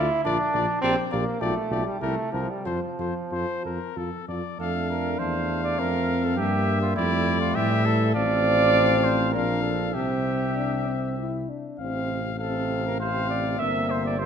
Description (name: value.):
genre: classical, brass quintet.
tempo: 91-104 BPM.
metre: 3/4.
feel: rubato.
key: F major.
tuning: A4 = 440 Hz.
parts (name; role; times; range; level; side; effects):
bright trumpet; melody; 0.0-14.3 s; A4 to F5; -30 LUFS; left 9 dB; none.
clear flugelhorn; second line; 0.0-14.3 s; E4 to E5; -28 LUFS; right 4 dB; none.
brilliant trombone; accompaniment; 0.0-14.3 s; C3 to E4; -30 LUFS; right 2 dB; none.
warm French horn; accompaniment; 0.0-14.3 s; G3 to G4; -30 LUFS; left 3 dB; none.
mellow tuba; bass; 0.0-14.3 s; G1 to A2; -28 LUFS; right 2 dB; none.
room: wet recital hall reverb, RT60 1.5 s.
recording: none.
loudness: -22 LUFS.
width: side -7 dB against mid.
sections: 0.0-4.6 A section; 4.6-14.3 A section.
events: none.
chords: 0.2 Bb; 0.8 Gm/Bb; 1.4 G7/B; 2.0 C7; 2.7 F; 6.4 Edim; 8.2 F/A; 9.3 Bb; 9.9 C; 11.8 F/A; 13.6 C7/G.